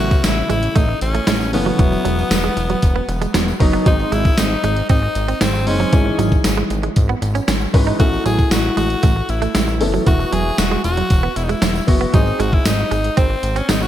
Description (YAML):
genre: 1980s-style pop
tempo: 116 BPM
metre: 4/4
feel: straight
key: E major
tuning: A4 = 440 Hz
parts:
  - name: raspy tenor saxophone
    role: melody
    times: 0.0-13.9 s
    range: B3 to G#4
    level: -22 LUFS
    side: left 2 dB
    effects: ping-pong delay
  - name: warm baby grand piano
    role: accompaniment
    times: 0.0-13.9 s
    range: C#3 to B4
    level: -23 LUFS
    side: left 2 dB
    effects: lush chorus
  - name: direct-recorded clean electric guitar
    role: riff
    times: 0.0-13.9 s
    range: E3 to D#4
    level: -24 LUFS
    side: right 7 dB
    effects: analog chorus, ping-pong delay
  - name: fat analog bass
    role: bass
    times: 0.0-13.9 s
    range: E1 to A1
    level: -20 LUFS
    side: equal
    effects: none
  - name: gated 80s digital drum machine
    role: drums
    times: 0.1-13.8 s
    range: hi-hat, kick drum, snare drum, tambourine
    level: -17 LUFS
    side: equal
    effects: gated reverb, gated reverb snare
  - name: tambourine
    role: percussion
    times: 0.1-13.9 s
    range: none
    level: -36 LUFS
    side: right 6 dB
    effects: none
room: light reverb, digital ambience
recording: none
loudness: -14 LUFS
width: side -12 dB against mid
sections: 0.0-13.9 A section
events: none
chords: 0.0 Aadd9; 1.8 Esus2; 3.9 G#; 5.9 C#madd9/G#; 8.0 Aadd9; 10.1 Esus2; 12.1 G#